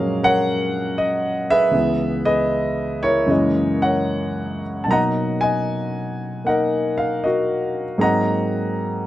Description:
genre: solo jazz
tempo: 78 BPM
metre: 4/4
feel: swing 66% on 8ths, rubato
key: unclear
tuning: A4 = 441 Hz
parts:
  - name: warm grand piano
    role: solo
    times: 0.0-9.1 s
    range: Db2 to Bb5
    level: -18 LUFS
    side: equal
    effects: none
room: light reverb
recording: close, detailed microphones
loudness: -18 LUFS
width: side -14 dB against mid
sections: 0.0-9.1 A section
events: none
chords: 0.0 Gbmaj9; 1.7 Dbm7; 3.3 Gb13; 4.9 Cbmaj7; 8.0 Ab9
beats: 0.22 0.98 | 1.74 2.52 3.30 4.11 | 4.91 5.69 6.48 7.25 | 8.01 8.77

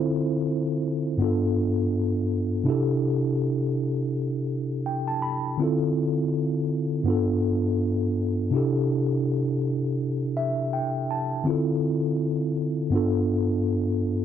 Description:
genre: reggae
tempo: 82 BPM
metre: 4/4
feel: swing 57% on 16ths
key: C major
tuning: A4 = 440 Hz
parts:
  - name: mellow tine electric piano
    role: solo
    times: 0.0-14.2 s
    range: G2 to B5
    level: -23 LUFS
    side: equal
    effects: medium stereo tremolo
room: moderate booth ambience, RT60 0.2 s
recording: dry, close 1970s-style studio recording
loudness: -23 LUFS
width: side -9 dB against mid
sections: 0.0-14.2 A section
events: tine electric piano fill 4.5-5.6, 10.0-11.4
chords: 0.0 Dm7; 1.2 G7; 2.7 C6; 5.6 Dm7; 7.1 G7; 8.5 C6; 11.4 Dm7; 12.9 G7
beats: 0.47 1.20 1.94 | 2.67 3.40 4.13 4.86 | 5.59 6.33 7.06 7.79 | 8.52 9.25 9.99 10.72 | 11.45 12.18 12.91 13.64

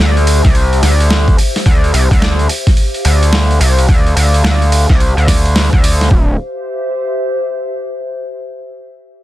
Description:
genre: glitch hop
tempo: 108 BPM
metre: 4/4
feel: swing 63% on 16ths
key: D minor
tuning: A4 = 440 Hz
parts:
  - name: gritty driven synth bass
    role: bass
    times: 0.0-6.4 s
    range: D1 to D2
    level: -11 LUFS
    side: equal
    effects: tube saturation
  - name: warbly tape-like pad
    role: texture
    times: 0.0-8.3 s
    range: G4 to F5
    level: -21 LUFS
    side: left 2 dB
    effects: chorus, built-in reverb, sidechain pumping
  - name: boom bap sampler-style drum kit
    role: drums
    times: 0.2-6.1 s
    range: hi-hat, snare drum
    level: -17 LUFS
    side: right 1 dB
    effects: overdrive
  - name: electronic kick drum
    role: drums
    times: 0.4-6.2 s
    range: none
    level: -10 LUFS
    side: equal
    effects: overdrive
room: light reverb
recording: dense, heavily limited modern master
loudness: -9 LUFS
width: side -15 dB against mid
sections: 0.0-6.1 A section; 6.1-8.3 B section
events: none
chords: 0.0 Dm7; 6.1 D9sus4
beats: 0.55 1.11 | 1.66 2.22 2.77 3.33 | 3.88 4.44 5.00 5.55 | 6.11 6.66 7.22 7.77

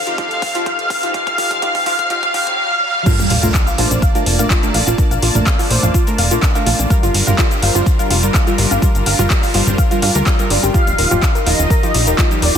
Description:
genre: progressive house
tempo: 125 BPM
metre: 4/4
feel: straight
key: unclear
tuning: A4 = 438 Hz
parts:
  - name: expressive portamento lead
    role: melody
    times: 0.0-3.0, 10.7-12.6 s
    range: D5 to F5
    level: -18 LUFS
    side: left 1 dB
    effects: ensemble chorus, ping-pong delay
  - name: filtered supersaw swell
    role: sustained chords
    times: 0.0-12.6 s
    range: F3 to A5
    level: -24 LUFS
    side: equal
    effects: phaser, sidechain pumping
  - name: deep mellow chord stab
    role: stabs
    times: 0.0-12.4 s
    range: F3 to C5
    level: -24 LUFS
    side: right 1 dB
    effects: chorus, sidechain pumping, ping-pong delay
  - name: riser and sub drop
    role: sound effects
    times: 0.3-5.0 s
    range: none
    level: -26 LUFS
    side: right 2 dB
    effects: none
  - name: soft round pluck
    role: arpeggios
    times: 0.1-12.6 s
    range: F4 to F5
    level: -22 LUFS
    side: equal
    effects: wide subtle chorus, sidechain pumping, ping-pong delay
  - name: deep house drum kit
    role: drums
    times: 0.1-12.6 s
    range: crash cymbal, handclaps, hi-hat, shaker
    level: -20 LUFS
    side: left 1 dB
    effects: overdrive
  - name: electronic kick drum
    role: drums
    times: 0.2-12.3 s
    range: none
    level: -16 LUFS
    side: equal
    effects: none
  - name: plucky analog bass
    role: bass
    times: 3.2-12.6 s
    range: Eb1 to G2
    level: -18 LUFS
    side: equal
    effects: sidechain pumping
  - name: electronic toms and congas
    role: percussion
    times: 3.4-12.6 s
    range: none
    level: -22 LUFS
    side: right 2 dB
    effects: sidechain pumping on toms, sidechain pumping on perc
room: light reverb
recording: dense, heavily limited modern master, high-pass filter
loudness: -12 LUFS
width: side -8 dB against mid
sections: 0.0-3.1 A section; 3.1-12.6 B section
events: build-up 0.0-3.1; drum fill 0.0-2.6; filter sweep on synth pluck 0.0-3.1; drop 3.1-12.6; impact 3.1-5.0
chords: 0.0 F7; 3.1 Bbmaj7; 6.9 Gm7; 10.7 Ebadd9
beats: 0.18 0.66 | 1.14 1.62 2.10 2.58 | 3.06 3.54 4.02 4.50 | 4.98 5.46 5.94 6.42 | 6.90 7.38 7.86 8.34 | 8.82 9.30 9.78 10.26 | 10.74 11.22 11.70 12.18

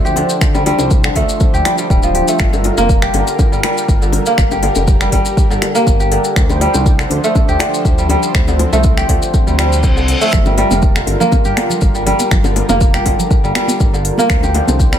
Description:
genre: afro house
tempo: 121 BPM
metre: 4/4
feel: swing 54% on 16ths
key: G minor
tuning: A4 = 439 Hz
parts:
  - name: warm analog pad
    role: sustained chords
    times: 0.0-15.0 s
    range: F3 to C5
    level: -22 LUFS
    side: right 1 dB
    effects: chorus, sidechain pumping
  - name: kora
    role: arpeggios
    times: 0.0-15.0 s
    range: D3 to G4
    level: -16 LUFS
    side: equal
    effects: sidechain pumping, ping-pong delay
  - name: smooth gliding synth bass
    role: bass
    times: 0.0-15.0 s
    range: D1 to D2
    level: -18 LUFS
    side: equal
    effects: sidechain pumping
  - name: maracas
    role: percussion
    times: 0.1-15.0 s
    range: none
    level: -25 LUFS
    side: left 5 dB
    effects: none
  - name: afro-pop drum kit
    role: drums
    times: 0.2-15.0 s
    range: finger snaps, hi-hat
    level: -22 LUFS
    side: left 1 dB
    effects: none
  - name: bongos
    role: percussion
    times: 0.2-14.8 s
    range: none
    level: -23 LUFS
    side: left 6 dB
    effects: none
  - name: electronic kick drum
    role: drums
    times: 0.4-14.9 s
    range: none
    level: -14 LUFS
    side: equal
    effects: none
  - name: reverse cymbal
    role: sound effects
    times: 9.7-10.3 s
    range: none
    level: -22 LUFS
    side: left 2 dB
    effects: none
  - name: congas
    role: percussion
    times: 10.3-15.0 s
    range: none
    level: -21 LUFS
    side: right 3 dB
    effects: none
room: small room ambience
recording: none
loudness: -11 LUFS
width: side -9 dB against mid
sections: 0.0-15.0 A section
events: reverse cymbal 9.7-10.3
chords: 0.0 Dm7; 2.4 Gm7; 6.4 Dm7; 10.3 Gm7; 14.3 Dm7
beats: | 0.41 0.91 1.40 1.90 | 2.40 2.89 3.39 3.88 | 4.38 4.88 5.37 5.87 | 6.36 6.86 7.36 7.85 | 8.35 8.84 9.34 9.83 | 10.33 10.83 11.32 11.82 | 12.31 12.81 13.30 13.80 | 14.30 14.79

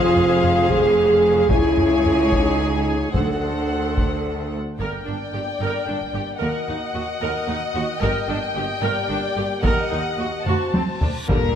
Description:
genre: cinematic, epic orchestral film score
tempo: 74 BPM (dotted quarters)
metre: 6/8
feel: straight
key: G harmonic minor from 4.8 s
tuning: A4 = 442 Hz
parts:
  - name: rich symphonic violin section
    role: melody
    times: 0.0-11.6 s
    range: Bb4 to A5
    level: -28 LUFS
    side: left 4 dB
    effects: none
  - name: warm symphonic violin section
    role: second line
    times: 0.0-11.4 s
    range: Bb3 to Eb5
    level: -29 LUFS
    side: left 3 dB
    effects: none
  - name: rich symphonic viola section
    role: accompaniment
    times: 0.0-11.4 s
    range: D3 to Bb4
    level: -27 LUFS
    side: right 1 dB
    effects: none
  - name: dark French horn section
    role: sustained chords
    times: 0.0-11.6 s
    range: Bb3 to Ab4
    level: -22 LUFS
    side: equal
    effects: none
  - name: clear symphonic double bass section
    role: bass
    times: 0.0-11.6 s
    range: F1 to G2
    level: -28 LUFS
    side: right 3 dB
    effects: none
  - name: rich symphonic cello section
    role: bass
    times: 0.0-11.6 s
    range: C#2 to Bb2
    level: -28 LUFS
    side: right 2 dB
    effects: none
  - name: taiko ensemble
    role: drums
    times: 0.2-11.6 s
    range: none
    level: -23 LUFS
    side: equal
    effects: none
  - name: reverse cymbal and sub drop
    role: sound effects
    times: 11.0-11.6 s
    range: none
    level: -30 LUFS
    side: left 1 dB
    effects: none
room: wet scoring stage reverb, RT60 1.7 s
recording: none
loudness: -18 LUFS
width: side -9 dB against mid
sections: 0.0-4.8 A section; 4.8-11.3 B section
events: drum fill 10.5-11.3; reverse cymbal 11.0-11.3; impact 11.3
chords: 0.0 Fm; 1.5 C#m; 3.1 D7; 4.8 Gm; 6.4 Ebm; 8.0 Gm; 9.6 Ebm; 10.5 D7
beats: 0.69 | 1.50 2.31 | 3.13 3.97 | 4.79 5.60 | 6.41 7.21 | 8.02 8.82 | 9.64 10.46 | 11.29

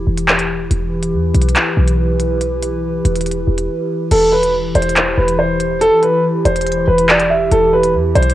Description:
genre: hip hop, drill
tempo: 141 BPM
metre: 4/4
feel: half-time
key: E minor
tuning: A4 = 442 Hz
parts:
  - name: warbly tape-like pad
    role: sustained chords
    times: 0.0-8.3 s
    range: E3 to B4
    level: -19 LUFS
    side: equal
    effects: chorus, built-in reverb, cassette tape
  - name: short 808-style bass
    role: bass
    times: 0.0-8.3 s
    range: E1 to E2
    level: -18 LUFS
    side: equal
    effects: none
  - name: drill drum kit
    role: drums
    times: 0.2-8.3 s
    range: crash cymbal, handclaps, hi-hat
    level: -18 LUFS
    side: equal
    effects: cassette tape
  - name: dark baby grand piano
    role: melody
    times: 4.1-8.3 s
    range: A4 to E5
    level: -14 LUFS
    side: equal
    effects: cassette tape
room: light reverb, digital ambience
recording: home recording on cassette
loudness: -12 LUFS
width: side -13 dB against mid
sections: 0.0-4.1 A section; 4.1-8.3 B section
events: break 0.0-4.1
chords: 0.0 Em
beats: 0.28 | 0.71 1.13 1.56 1.98 | 2.41 2.83 3.26 3.69 | 4.11 4.54 4.96 5.39 | 5.81 6.24 6.67 7.09 | 7.52 7.94

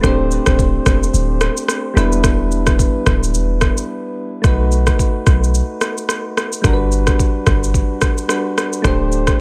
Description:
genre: afrobeats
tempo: 109 BPM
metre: 4/4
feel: swing 58% on 16ths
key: unclear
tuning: A4 = 440 Hz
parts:
  - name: soft electric-piano-like synth keys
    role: accompaniment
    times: 0.0-9.4 s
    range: G3 to C5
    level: -22 LUFS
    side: equal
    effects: chorus, tremolo
  - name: clean 808-style bass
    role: bass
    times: 0.0-9.3 s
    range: D1 to B1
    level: -19 LUFS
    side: equal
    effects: none
  - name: afro-pop drum kit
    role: drums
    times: 0.0-9.4 s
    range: kick drum, rim click, shaker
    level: -19 LUFS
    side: equal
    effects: vintage 12-bit sampler grit
room: little or no reverb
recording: none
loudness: -16 LUFS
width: mono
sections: 0.0-4.4 A section; 4.4-9.4 B section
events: break 3.9-4.4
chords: 0.0 D7sus4; 2.0 Em7; 4.4 B7; 6.6 Gmaj7; 8.8 D7sus4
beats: | 0.04 0.59 1.14 1.69 | 2.24 2.79 3.34 3.89 | 4.44 4.99 5.54 6.09 | 6.64 7.19 7.74 8.29 | 8.84 9.39

